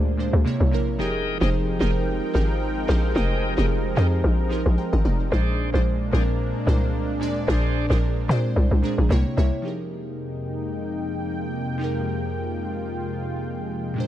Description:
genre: amapiano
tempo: 111 BPM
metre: 4/4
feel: swing 55% on 16ths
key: F dorian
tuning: A4 = 440 Hz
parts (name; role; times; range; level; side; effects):
- glassy digital keys; accompaniment; 0.0-14.1 s; Bb2 to C6; -27 LUFS; right 1 dB; chorus
- lush unison pad; sustained chords; 0.0-14.1 s; F2 to G5; -29 LUFS; left 1 dB; chorus
- hollow log drum bass; bass; 0.0-9.5 s; F1 to Bb2; -21 LUFS; equal; none
- bright tonewheel organ; stabs; 1.0-8.4 s; Ab4 to G5; -33 LUFS; left 1 dB; slow rotary speaker, tape echo
room: digital ambience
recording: none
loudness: -21 LUFS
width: side -12 dB against mid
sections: 0.0-9.6 A section; 9.6-14.1 B section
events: drop 0.0-9.6; synth keys fill 4.2-5.3, 8.6-9.6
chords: 0.5 C7b9; 1.0 Fm11; 5.3 Bb9; 9.1 C7b9; 9.6 Fm11

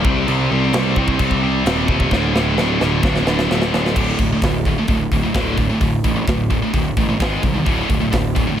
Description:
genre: heavy metal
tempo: 130 BPM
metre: 4/4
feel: straight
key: unclear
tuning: A4 = 440 Hz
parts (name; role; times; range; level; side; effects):
- scooped high-gain guitar; riff; 0.0-8.6 s; D2 to C4; -18 LUFS; equal; distortion
- fuzz picked electric bass; bass; 0.0-8.5 s; D1 to C2; -21 LUFS; equal; overdrive
- tight metal drum kit; drums; 0.0-8.5 s; china cymbal, crash cymbal, hi-hat, kick drum, snare drum; -20 LUFS; equal; none
room: small room ambience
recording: none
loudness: -15 LUFS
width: side -10 dB against mid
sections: 0.0-4.0 A section; 4.0-8.6 B section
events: drum fill 2.1-4.0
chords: 0.0 Cm; 2.1 D5; 7.2 G#5; 7.7 D5

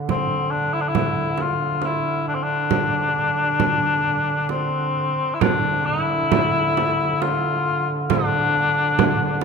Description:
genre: caucasian folk, Caucasian lament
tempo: 68 BPM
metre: 3/4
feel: rubato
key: D minor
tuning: A4 = 440 Hz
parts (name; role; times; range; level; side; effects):
- mellow duduk; drone; 0.0-9.4 s; D3; -26 LUFS; right 3 dB; none
- mellow cor anglais; melody; 0.1-9.4 s; C4 to F4; -21 LUFS; left 4 dB; none
- frame drum; percussion; 0.1-9.4 s; none; -24 LUFS; right 5 dB; none
room: wet cathedral reverb, RT60 4.2 s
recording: minimal, uncompressed stereo recording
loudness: -18 LUFS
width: side -5 dB against mid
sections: 0.0-5.4 A section; 5.4-9.4 B section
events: none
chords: none

